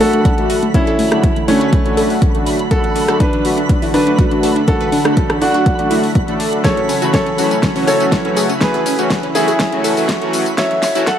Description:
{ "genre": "progressive house", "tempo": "122 BPM", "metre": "4/4", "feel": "straight", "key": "unclear", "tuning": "A4 = 440 Hz", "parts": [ { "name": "bright grand piano", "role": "melody", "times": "0.0-11.2 s", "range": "A3 to F#5", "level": "-18 LUFS", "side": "equal", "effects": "tape echo" }, { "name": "lush unison pad", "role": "sustained chords", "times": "0.0-11.2 s", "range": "C#3 to A4", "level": "-23 LUFS", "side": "right 1 dB", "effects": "chorus, sidechain pumping" }, { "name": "wide unison pluck", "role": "arpeggios", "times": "0.0-11.2 s", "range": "F#3 to B4", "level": "-22 LUFS", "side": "equal", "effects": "sidechain pumping, tape echo" }, { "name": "soft supersaw", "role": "stabs", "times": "0.0-11.1 s", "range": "E3 to A4", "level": "-20 LUFS", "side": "left 1 dB", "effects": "sidechain pumping, low-pass filter, tape echo" }, { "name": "deep house drum kit", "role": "drums", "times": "0.0-11.2 s", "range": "hi-hat, rim click, snare drum, tambourine", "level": "-22 LUFS", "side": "equal", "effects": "overdrive, sidechain pumping on perc, studio reverb, sidechain pumping on hats" }, { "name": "twinkling granular texture", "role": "texture", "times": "0.0-11.2 s", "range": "B5", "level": "-29 LUFS", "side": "right 5 dB", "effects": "built-in reverb, sidechain pumping" }, { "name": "electronic kick drum", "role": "drums", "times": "0.3-11.2 s", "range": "none", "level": "-17 LUFS", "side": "equal", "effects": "overdrive, studio reverb" } ], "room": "light reverb", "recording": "high-pass filter", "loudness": "-12 LUFS", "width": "side -9 dB against mid", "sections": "0.0-11.2 A section", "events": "build-up 0.0-11.2; filter sweep on supersaw synth 0.0-11.2; filter sweep 0.0-11.2; drum fill 6.6-11.2", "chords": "0.0 D; 6.6 F#m7", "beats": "0.25 | 0.74 1.24 1.73 2.22 | 2.71 3.20 3.69 4.19 | 4.68 5.17 5.66 6.15 | 6.64 7.14 7.63 8.12 | 8.61 9.10 9.60 10.09 | 10.58 11.07" }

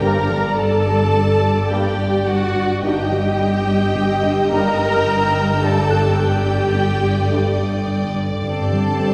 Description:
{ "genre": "cinematic, suspense film score", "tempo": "107 BPM", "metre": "5/4", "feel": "straight", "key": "G harmonic minor", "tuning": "A4 = 441 Hz", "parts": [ { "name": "warm symphonic violin section", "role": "melody", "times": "0.0-9.1 s", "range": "D5 to Eb5", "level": "-30 LUFS", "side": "equal", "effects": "none" }, { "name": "warm symphonic violin section", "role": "second line", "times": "0.0-9.1 s", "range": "F#5 to Bb5", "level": "-27 LUFS", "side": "equal", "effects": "none" }, { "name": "warm symphonic viola section", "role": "accompaniment", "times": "0.0-9.1 s", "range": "F#4 to Bb4", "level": "-24 LUFS", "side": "equal", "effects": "none" }, { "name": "clear trombone section", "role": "sustained chords", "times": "0.0-9.1 s", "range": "G2 to G3", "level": "-33 LUFS", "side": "equal", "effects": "none" }, { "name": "dark French horn section", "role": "sustained chords", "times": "0.0-9.1 s", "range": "A3 to Eb4", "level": "-32 LUFS", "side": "equal", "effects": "none" }, { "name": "glass harmonica", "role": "sustained chords", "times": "0.0-9.1 s", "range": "Eb4 to G5", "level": "-33 LUFS", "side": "equal", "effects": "none" }, { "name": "smooth gliding synth bass", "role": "riff", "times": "0.0-9.1 s", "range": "G2 to G3", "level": "-26 LUFS", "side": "equal", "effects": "none" }, { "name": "clear studio cello section", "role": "bass", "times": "0.0-9.1 s", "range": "G2", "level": "-26 LUFS", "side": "equal", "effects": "none" }, { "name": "clear symphonic double bass section", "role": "bass", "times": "0.0-9.1 s", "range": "G1", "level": "-25 LUFS", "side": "equal", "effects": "none" }, { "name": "music box", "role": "texture", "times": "0.0-7.5 s", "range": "G4 to A6", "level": "-32 LUFS", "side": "equal", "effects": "none" }, { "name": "rich studio violin section", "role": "texture", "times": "2.8-9.1 s", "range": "E6 to C7", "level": "-38 LUFS", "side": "equal", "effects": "none" } ], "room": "wet concert hall reverb, RT60 2.1 s", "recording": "heard from further back in the room", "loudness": "-18 LUFS", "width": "mono", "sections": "0.0-9.1 A section", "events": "none", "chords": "0.0 Gm; 2.8 Eb/G; 5.6 Dsus4/G; 8.4 Csus2/G", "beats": "| 0.02 0.58 1.14 1.70 2.26 | 2.82 3.38 3.94 4.50 5.07 | 5.63 6.19 6.75 7.31 7.87 | 8.43 8.99" }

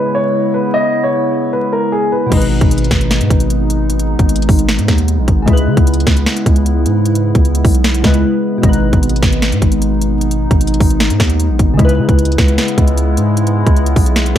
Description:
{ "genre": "hip hop, trap", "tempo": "152 BPM", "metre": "4/4", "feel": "half-time", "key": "G# minor", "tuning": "A4 = 440 Hz", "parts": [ { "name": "dark concert grand piano", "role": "melody", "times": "0.0-2.3 s", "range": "G#4 to D#5", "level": "-16 LUFS", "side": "left 1 dB", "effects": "low-pass filter, tape echo" }, { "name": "glassy digital keys", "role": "accompaniment", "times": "0.0-14.4 s", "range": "B2 to B4", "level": "-20 LUFS", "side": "left 2 dB", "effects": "chorus, low-pass filter" }, { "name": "warbly tape-like pad", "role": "sustained chords", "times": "0.0-14.4 s", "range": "C#3 to E4", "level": "-18 LUFS", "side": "equal", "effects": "chorus, built-in reverb, low-pass filter" }, { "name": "long sustained 808-style bass", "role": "bass", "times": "2.3-14.4 s", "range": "G#1 to C#3", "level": "-15 LUFS", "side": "equal", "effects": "none" }, { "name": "trap drum kit", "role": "drums", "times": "2.3-14.4 s", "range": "crash cymbal, hi-hat, kick drum, snare drum", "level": "-13 LUFS", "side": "equal", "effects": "none" } ], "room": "light reverb, digital ambience", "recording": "vinyl crackle", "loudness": "-11 LUFS", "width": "side -10 dB against mid", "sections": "0.0-2.3 A section; 2.3-14.4 B section", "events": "break 8.2-8.6", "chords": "0.0 C#m7; 2.3 G#m; 5.5 C#m7; 8.6 G#m; 11.8 C#m7", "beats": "0.34 | 0.74 1.13 1.53 1.92 | 2.32 2.71 3.11 3.50 | 3.90 4.29 4.69 5.08 | 5.48 5.87 6.26 6.66 | 7.05 7.45 7.84 8.24 | 8.63 9.03 9.42 9.82 | 10.21 10.61 11.00 11.40 | 11.79 12.19 12.58 12.98 | 13.37 13.77 14.16" }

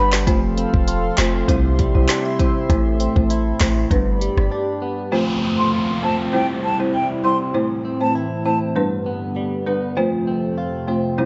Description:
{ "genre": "dancehall", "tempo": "99 BPM", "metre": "4/4", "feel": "straight", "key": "unclear", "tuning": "A4 = 440 Hz", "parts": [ { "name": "mellow hollow concert flute", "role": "melody", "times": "0.0-0.1, 5.6-8.6 s", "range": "G5 to C6", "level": "-25 LUFS", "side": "equal", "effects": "analog delay" }, { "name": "folk marimba with medium mallets", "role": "accompaniment", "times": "0.0-11.3 s", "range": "G3 to C5", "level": "-25 LUFS", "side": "equal", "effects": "none" }, { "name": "warm analog pad", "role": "sustained chords", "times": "0.0-11.3 s", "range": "F2 to C6", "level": "-28 LUFS", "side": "equal", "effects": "chorus" }, { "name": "direct-recorded clean electric guitar", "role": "arpeggios", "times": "0.0-11.3 s", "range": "G2 to F4", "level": "-28 LUFS", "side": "equal", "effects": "analog chorus" }, { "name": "clean 808-style bass", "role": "bass", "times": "0.0-4.5 s", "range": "E1 to C2", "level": "-22 LUFS", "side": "equal", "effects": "none" }, { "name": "deep house drum kit", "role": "drums", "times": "0.1-4.5 s", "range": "handclaps, hi-hat, kick drum, rim click, snare drum", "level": "-23 LUFS", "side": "equal", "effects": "none" }, { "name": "downlifter", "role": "sound effects", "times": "5.1-10.0 s", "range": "none", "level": "-33 LUFS", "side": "equal", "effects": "none" } ], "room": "moderate plate reverb, RT60 1.8 s", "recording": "dreamy mix soaked in reverb, nothing above 7.8 kHz", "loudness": "-20 LUFS", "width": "mono", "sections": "0.0-5.1 A section; 5.1-11.3 B section", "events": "break 4.5-5.1", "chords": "0.3 F; 1.5 C; 2.7 Am; 3.9 G; 5.1 F; 6.3 C; 7.5 Am; 8.8 G; 10.0 F", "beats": "| 0.27 0.88 1.49 2.09 | 2.70 3.30 3.91 4.52 | 5.12 5.73 6.33 6.94 | 7.55 8.15 8.76 9.36 | 9.97 10.58 11.18" }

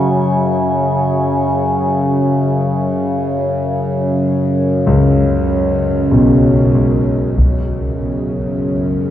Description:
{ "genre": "dark ambient drone", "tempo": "48 BPM", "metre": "4/4", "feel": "straight", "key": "unclear", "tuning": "A4 = 439 Hz", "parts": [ { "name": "deep dark ambient pad", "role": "sustained chords", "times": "0.0-7.4 s", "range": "F#4 to G#5", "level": "-25 LUFS", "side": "equal", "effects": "chorus, built-in reverb, shimmer reverb" }, { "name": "dark concert grand piano", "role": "arpeggios", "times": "0.0-9.1 s", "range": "B1 to C#2", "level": "-15 LUFS", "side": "left 1 dB", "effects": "tape echo" }, { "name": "overtone-sweeping drone", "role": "drone", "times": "0.0-9.1 s", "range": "F#2 to C#3", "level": "-15 LUFS", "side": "equal", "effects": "chorus, built-in reverb" }, { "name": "taiko ensemble", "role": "percussion", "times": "7.4-7.6 s", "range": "none", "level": "-18 LUFS", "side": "equal", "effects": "low-pass filter on perc" }, { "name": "bronze singing bowl", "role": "texture", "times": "7.4-9.1 s", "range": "none", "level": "barely audible", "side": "none", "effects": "none" } ], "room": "wet cathedral reverb, RT60 5.7 s", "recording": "in a vast, echoing space", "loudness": "-13 LUFS", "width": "side -11 dB against mid", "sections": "0.0-7.4 A section; 7.4-9.1 B section", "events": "none", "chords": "0.0 F#5", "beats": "1.12 | 2.37 3.62 4.87 6.12 | 7.37 8.62" }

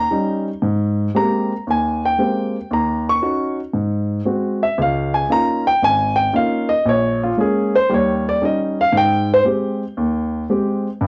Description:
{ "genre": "solo jazz", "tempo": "116 BPM", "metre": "4/4", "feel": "swing 68% on 8ths", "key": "unclear", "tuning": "A4 = 440 Hz", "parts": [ { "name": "warm baby grand piano", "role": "solo", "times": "0.0-11.1 s", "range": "Ab1 to Db6", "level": "-18 LUFS", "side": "equal", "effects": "cassette tape" } ], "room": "wet studio reverb, RT60 0.5 s", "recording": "home recording on cassette", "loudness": "-18 LUFS", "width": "mono", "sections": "0.0-11.1 A section", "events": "grand piano solo 0.0-11.1", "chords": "0.0 Eb7; 0.6 Abmaj9; 2.7 Ebm7; 3.7 Ab7; 4.8 Db69; 6.9 Bbm7; 7.9 Eb7; 8.9 Abmaj7", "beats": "0.10 | 0.62 1.14 1.66 2.18 | 2.70 3.22 3.74 4.25 | 4.78 5.29 5.81 6.33 | 6.85 7.37 7.89 8.41 | 8.93 9.45 9.97 10.49 | 11.01" }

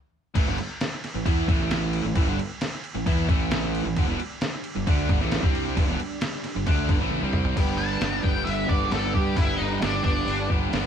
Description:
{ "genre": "classic rock", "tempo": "133 BPM", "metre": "4/4", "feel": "straight", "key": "unclear", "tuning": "A4 = 440 Hz", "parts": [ { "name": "distorted electric guitar", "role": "riff", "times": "0.3-10.9 s", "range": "E2 to G4", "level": "-31 LUFS", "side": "left 8 dB", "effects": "overdrive" }, { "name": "crunchy overdriven guitar", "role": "riff", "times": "0.4-10.9 s", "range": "E2 to G4", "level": "-30 LUFS", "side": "right 8 dB", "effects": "none" }, { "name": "fuzz fingered electric bass", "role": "bass", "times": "0.4-10.9 s", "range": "E1 to G2", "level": "-29 LUFS", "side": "equal", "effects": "overdrive" }, { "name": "trip hop sampler-style drum kit", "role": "drums", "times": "0.4-10.8 s", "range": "crash cymbal, hi-hat, kick drum, snare drum, toms", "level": "-25 LUFS", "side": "equal", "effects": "none" }, { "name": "string machine, full ensemble", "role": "sustained chords", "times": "4.0-10.9 s", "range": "G3 to D5", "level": "-37 LUFS", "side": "left 1 dB", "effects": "none" }, { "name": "picked twelve-string acoustic guitar", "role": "accompaniment", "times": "7.6-10.9 s", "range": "G3 to B4", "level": "-37 LUFS", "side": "left 5 dB", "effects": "none" }, { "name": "octave-fuzz lead guitar", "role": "melody", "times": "7.8-10.5 s", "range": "D4 to A5", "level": "-28 LUFS", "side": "equal", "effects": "wah, distortion" } ], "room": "light reverb", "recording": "band playing live in one room", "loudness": "-22 LUFS", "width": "side -8 dB against mid", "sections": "0.4-7.6 A section; 7.6-10.9 B section", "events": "stop 0.0-0.4; drum fill 7.1-7.6; lead electric guitar solo 7.6-10.9", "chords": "0.4 A5; 4.0 G5; 7.6 G", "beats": "| 0.35 0.81 1.26 1.71 | 2.16 2.61 3.06 3.51 | 3.96 4.41 4.86 5.32 | 5.76 6.22 6.67 7.12 | 7.57 8.02 8.47 8.92 | 9.38 9.83 10.28 10.73" }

